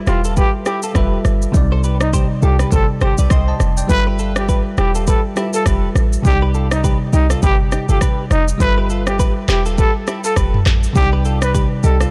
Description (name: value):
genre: afrobeats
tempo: 102 BPM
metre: 4/4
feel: swing 58% on 16ths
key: G mixolydian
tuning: A4 = 440 Hz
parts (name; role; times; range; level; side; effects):
- bell-like tine electric piano; accompaniment; 0.0-12.1 s; C3 to C6; -24 LUFS; equal; none
- breathy trumpet; melody; 0.1-12.0 s; Eb4 to B4; -24 LUFS; equal; delay
- direct-recorded clean electric guitar; riff; 0.1-12.1 s; Eb4 to Eb5; -28 LUFS; equal; analog chorus, delay
- short 808-style bass; bass; 0.1-12.1 s; E1 to C2; -19 LUFS; equal; none
- afro-pop drum kit; drums; 0.1-12.1 s; handclaps, kick drum, rim click, shaker, toms; -21 LUFS; equal; none
room: little or no reverb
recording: dark, warm production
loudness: -16 LUFS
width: mono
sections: 0.0-3.9 A section; 3.9-12.1 B section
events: none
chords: 0.0 G13; 1.5 Cmadd9; 3.9 G13; 6.2 Cmadd9; 8.6 G13; 11.0 Cmadd9